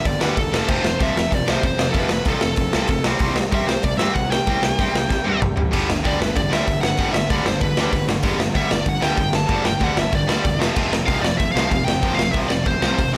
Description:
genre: punk rock.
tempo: 190 BPM.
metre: 4/4.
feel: straight.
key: unclear.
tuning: A4 = 440 Hz.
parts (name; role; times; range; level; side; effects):
bluesy overdriven lead guitar; melody; 0.0-13.1 s; A4 to A5; -27 LUFS; equal; distortion, tape echo.
biting overdriven guitar; riff; 0.0-13.2 s; F2 to C4; -27 LUFS; equal; none.
fuzz picked electric bass; bass; 0.1-13.2 s; E1 to G2; -29 LUFS; equal; overdrive.
raw garage drum kit; drums; 0.1-13.1 s; crash cymbal, hi-hat, kick drum, snare drum, toms; -24 LUFS; equal; none.
tight distorted guitar; riff; 5.7-13.2 s; F2 to G3; -29 LUFS; equal; distortion.
room: little or no reverb.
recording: none.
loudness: -20 LUFS.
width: mono.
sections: 0.0-13.2 A section.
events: drum fill 5.1-5.7.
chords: 0.0 G; 0.5 F; 3.0 C5; 5.7 G5; 10.6 F5.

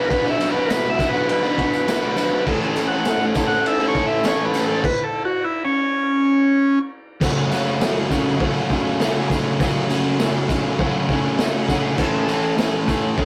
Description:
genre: garage rock duo or trio.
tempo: 101 BPM.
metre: 4/4.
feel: straight.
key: F# minor.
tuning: A4 = 440 Hz.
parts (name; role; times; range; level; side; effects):
combo organ; melody; 0.0-6.8 s; C#4 to F#5; -22 LUFS; equal; phaser.
overdriven semi-hollow guitar; riff; 0.0-13.2 s; F#2 to A4; -22 LUFS; equal; none.
vintage drum kit; drums; 0.1-13.2 s; crash cymbal, hi-hat, kick drum, ride cymbal, snare drum; -26 LUFS; equal; none.
tambourine; percussion; 0.1-13.0 s; none; -43 LUFS; equal; none.
room: moderate studio reverb, RT60 0.6 s.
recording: rough rehearsal-room recording, warm saturation.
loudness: -20 LUFS.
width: mono.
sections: 0.0-7.2 A section; 7.2-13.2 B section.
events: transistor combo organ solo 0.0-7.2.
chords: 0.0 Bm; 2.5 A; 7.2 F#m; 12.0 A.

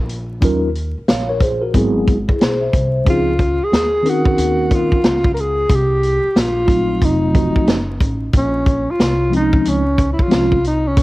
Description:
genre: hip hop, jazz-hop.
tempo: 91 BPM.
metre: 4/4.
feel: swing 64% on 16ths.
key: Bb minor.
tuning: A4 = 440 Hz.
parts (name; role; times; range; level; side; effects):
upright bass; bass; 0.0-11.0 s; F1 to Eb2; -21 LUFS; equal; none.
vintage drum kit; drums; 0.1-11.0 s; hi-hat, kick drum, snare drum; -16 LUFS; equal; cassette tape.
mellow tine electric piano; accompaniment; 0.4-10.6 s; Eb3 to F5; -19 LUFS; equal; medium stereo tremolo, cassette tape.
vibraphone with soft mallets; second line; 2.3-3.0 s; E4 to E5; -21 LUFS; left 2 dB; cassette tape.
breathy tenor saxophone; melody; 3.1-11.0 s; Db4 to Bb4; -17 LUFS; equal; cassette tape.
room: light reverb, small room ambience.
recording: home recording on cassette, vinyl crackle.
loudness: -14 LUFS.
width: side -18 dB against mid.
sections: 0.0-11.0 A section.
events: none.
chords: 0.4 Ebm9; 1.7 Ab7alt; 3.1 Dbmaj9; 5.7 Cm7; 7.0 F7b9; 8.3 Bbm11.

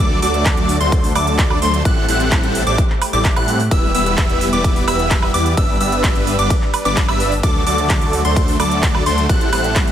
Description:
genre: EDM, festival progressive house.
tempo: 129 BPM.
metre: 4/4.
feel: straight.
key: unclear.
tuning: A4 = 440 Hz.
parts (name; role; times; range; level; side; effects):
lush unison pad; sustained chords; 0.0-9.9 s; D3 to C5; -26 LUFS; equal; chorus, sidechain pumping.
plucky unison lead; arpeggios; 0.0-9.9 s; C6 to F#6; -21 LUFS; left 1 dB; sidechain pumping, tape echo.
big supersaw lead; riff; 0.0-9.9 s; F#3 to F#5; -20 LUFS; equal; phaser, sidechain pumping, tape echo.
detuned saw bass; bass; 0.0-9.9 s; E1 to A2; -22 LUFS; equal; sidechain pumping.
big-room dance drum kit; drums; 0.2-9.9 s; handclaps, hi-hat, ride cymbal, woodblock; -23 LUFS; right 2 dB; overdrive.
electronic kick drum; drums; 0.5-9.9 s; none; -17 LUFS; equal; none.
room: light reverb.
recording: none.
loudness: -13 LUFS.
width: side -10 dB against mid.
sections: 0.0-9.9 A section.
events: none.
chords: 0.0 D; 1.9 Am7; 3.7 Em; 5.6 G; 7.4 D; 9.3 Am7.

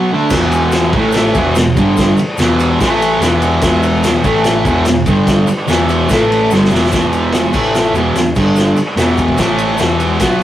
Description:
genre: garage rock duo or trio.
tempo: 146 BPM.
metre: 4/4.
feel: straight.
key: unclear.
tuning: A4 = 440 Hz.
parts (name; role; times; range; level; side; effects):
fuzz guitar; riff; 0.0-10.4 s; E2 to D4; -12 LUFS; equal; distortion.
hollow-body short-scale picked electric bass; bass; 0.3-10.4 s; E1 to B1; -22 LUFS; equal; tube saturation.
vintage drum kit; drums; 0.3-10.3 s; crash cymbal, kick drum, ride cymbal, snare drum; -16 LUFS; equal; none.
tube shaker; percussion; 0.3-10.4 s; none; -35 LUFS; left 4 dB; none.
room: moderate studio ambience, RT60 0.5 s.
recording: rough rehearsal-room recording, warm saturation.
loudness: -10 LUFS.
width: side -12 dB against mid.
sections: 0.3-6.9 A section; 6.9-10.4 B section.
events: break 0.0-0.3; drum fill 6.5-6.9.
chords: 0.3 E5; 0.9 A5; 1.3 E5; 1.8 G5; 2.2 E5; 2.8 A5; 3.2 E5; 4.2 A5; 4.6 E5; 5.1 G5; 5.5 E5; 6.1 A5; 6.5 E5; 7.5 A5; 7.9 E5; 8.3 G5; 8.8 E5; 9.4 A5; 9.8 E5.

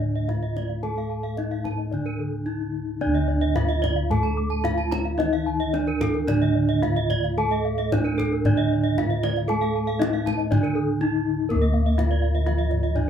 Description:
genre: Balinese gamelan.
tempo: 110-123 BPM.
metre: 4/4.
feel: straight.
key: D pelog.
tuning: A4 = 441 Hz.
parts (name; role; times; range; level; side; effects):
gamelan-type bronze metallophone; melody; 0.0-13.1 s; Bb3-20c to A4-30c; -26 LUFS; right 2 dB; none.
gamelan-type bronze metallophone; accompaniment; 0.0-13.1 s; D3 to Bb3-20c; -33 LUFS; left 1 dB; none.
gamelan-type bronze metallophone; arpeggios; 0.0-13.1 s; A4-30c to D6; -31 LUFS; left 5 dB; none.
gamelan-type bossed gongs; bass; 0.0-13.1 s; D2 to Bb4-20c; -26 LUFS; left 1 dB; none.
gamelan-type bronze metallophone; arpeggios; 0.2-13.0 s; A4-30c to Bb5-20c; -31 LUFS; right 3 dB; none.
kendang; percussion; 0.3-13.1 s; none; -29 LUFS; left 2 dB; none.
room: moderate small room reverb, RT60 0.5 s.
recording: band playing live in one room.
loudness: -21 LUFS.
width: side -8 dB against mid.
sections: 0.0-11.5 A section; 11.5-13.1 B section.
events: drum fill 10.9-11.5.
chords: none.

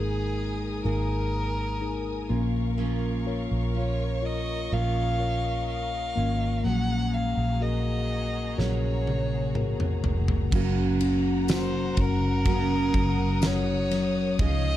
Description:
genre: pop ballad.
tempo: 62 BPM.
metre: 4/4.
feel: straight.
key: unclear.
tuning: A4 = 440 Hz.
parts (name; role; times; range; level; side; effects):
dark violin; melody; 0.0-14.8 s; Ab4 to Gb5; -32 LUFS; equal; none.
mellow tine electric piano; accompaniment; 0.0-14.8 s; Db3 to Db5; -31 LUFS; left 5 dB; none.
rich studio string section; sustained chords; 0.0-14.8 s; Gb4 to Eb6; -39 LUFS; left 2 dB; none.
picked steel-string acoustic guitar; arpeggios; 0.0-14.8 s; Gb2 to Ab4; -33 LUFS; right 6 dB; ping-pong delay.
vintage muted fingered electric bass; bass; 0.0-14.8 s; F1 to Db2; -28 LUFS; right 1 dB; none.
huge arena drum kit; drums; 8.6-14.6 s; crash cymbal, kick drum, ride cymbal, snare drum, toms; -28 LUFS; equal; none.
tambourine; percussion; 11.5-13.6 s; none; -43 LUFS; left 7 dB; none.
room: small room ambience.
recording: dark, warm production.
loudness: -24 LUFS.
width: side -13 dB against mid.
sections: 0.0-10.5 A section; 10.5-14.8 B section.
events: drum fill 8.6-10.5.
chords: 0.0 Absus2; 2.3 Bbm; 6.7 Gbadd9/Bb; 10.5 Gb.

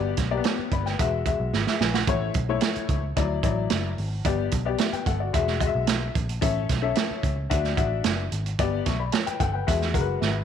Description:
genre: uptempo 1960s-style soul.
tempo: 111 BPM.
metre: 4/4.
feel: straight.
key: A major.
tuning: A4 = 440 Hz.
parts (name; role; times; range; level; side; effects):
clear upright piano; accompaniment; 0.0-10.4 s; F#3 to C#6; -27 LUFS; left 9 dB; none.
vintage muted picked electric bass; bass; 0.0-10.4 s; E1 to E2; -28 LUFS; equal; none.
crunchy breakbeat drum kit; drums; 0.2-10.3 s; hi-hat, kick drum, snare drum; -26 LUFS; right 4 dB; none.
room: light reverb, small room ambience.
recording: 1960s-style stereo.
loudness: -22 LUFS.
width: side -8 dB against mid.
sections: 0.0-10.4 A section.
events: drum fill 1.5-2.1, 10.2; upright piano fill 9.1-10.4.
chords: 0.0 G; 1.0 Eadd9; 2.1 A; 3.2 Dadd9; 4.3 G; 5.3 Eadd9; 6.4 A; 7.5 Dadd9; 8.6 G; 9.7 Eadd9.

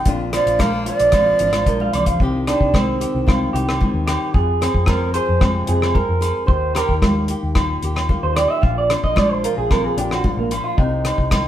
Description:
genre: highlife guitar band.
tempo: 112 BPM.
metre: 4/4.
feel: straight.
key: C minor.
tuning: A4 = 438 Hz.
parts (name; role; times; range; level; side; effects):
nylon-string guitar; accompaniment; 0.0-11.5 s; F2 to Ab4; -26 LUFS; left 4 dB; none.
electric guitar through a small old amp; arpeggios; 0.0-11.5 s; Bb3 to F5; -22 LUFS; right 3 dB; spring reverb.
woody fretless electric bass; bass; 0.1-11.5 s; Ab1 to F2; -23 LUFS; equal; none.
damped 70s drum kit; drums; 0.1-11.4 s; hi-hat, kick drum, rim click; -20 LUFS; equal; none.
congas; percussion; 0.1-11.4 s; none; -25 LUFS; right 1 dB; none.
mellow wooden flute; melody; 0.3-1.9 s; D5 to F5; -17 LUFS; right 2 dB; none.
edgy tenor saxophone; second line; 0.3-1.9 s; F3 to Bb3; -31 LUFS; left 3 dB; none.
agogo bells; percussion; 0.3-11.5 s; none; -28 LUFS; equal; none.
room: moderate stone room reverb, RT60 1.0 s.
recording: band playing live in one room.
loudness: -16 LUFS.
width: side -11 dB against mid.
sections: 0.0-2.2 A section; 2.2-11.5 B section.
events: drum fill 1.5-2.2; clean electric guitar solo 2.2-11.5.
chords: 0.1 Bb; 2.2 Cm; 4.4 Fm; 6.5 Eb; 8.6 Bb; 10.8 Cm.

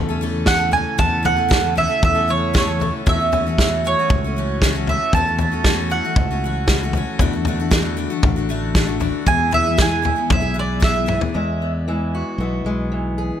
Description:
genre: indie folk with a building arrangement.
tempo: 116 BPM.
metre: 4/4.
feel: straight.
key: E mixolydian.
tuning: A4 = 439 Hz.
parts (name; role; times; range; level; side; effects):
picked steel-string acoustic guitar; accompaniment; 0.0-11.3 s; E3 to A4; -25 LUFS; left 7 dB; none.
mellow tonewheel organ; sustained chords; 0.0-11.3 s; B2 to F#4; -31 LUFS; right 3 dB; slow rotary speaker.
fingered electric bass; bass; 0.0-13.3 s; A1 to E2; -24 LUFS; equal; none.
mandolin; melody; 0.5-11.2 s; C#5 to A5; -20 LUFS; right 3 dB; tape echo.
natural country drum kit; drums; 0.5-11.3 s; kick drum, snare drum, toms; -19 LUFS; equal; none.
fingerpicked steel-string acoustic guitar; accompaniment; 11.3-13.4 s; E2 to G#4; -24 LUFS; left 1 dB; none.
room: light reverb.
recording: none.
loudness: -16 LUFS.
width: side -10 dB against mid.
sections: 0.0-11.3 A section; 11.3-13.4 B section.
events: drum fill 10.8-11.3.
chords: 0.0 A/E; 3.1 F#m7; 7.2 D/E; 9.3 E; 11.3 Eadd9.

